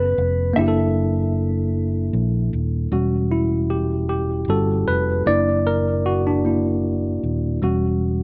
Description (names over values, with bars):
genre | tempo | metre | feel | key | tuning
slow six-eight R&B | 51 BPM (dotted quarters) | 6/8 | straight | E dorian | A4 = 440 Hz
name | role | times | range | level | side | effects
mellow electric guitar | melody | 0.0-2.5 s | B4 to E5 | -26 LUFS | equal | slapback echo
tine electric piano | accompaniment | 0.0-8.2 s | G3 to F#5 | -23 LUFS | equal | overdrive, slapback echo
fingered electric bass | bass | 0.0-8.2 s | D#1 to A#1 | -24 LUFS | equal | none
room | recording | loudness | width
little or no reverb | recorded outdoors, with no room sound | -21 LUFS | mono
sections
0.0-2.9 A section; 2.9-8.2 B section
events
tine electric piano solo 2.9-8.2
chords
0.0 Em69 (rootless); 0.6 F#7alt; 2.9 Em69; 5.3 F#aug7; 7.6 Em69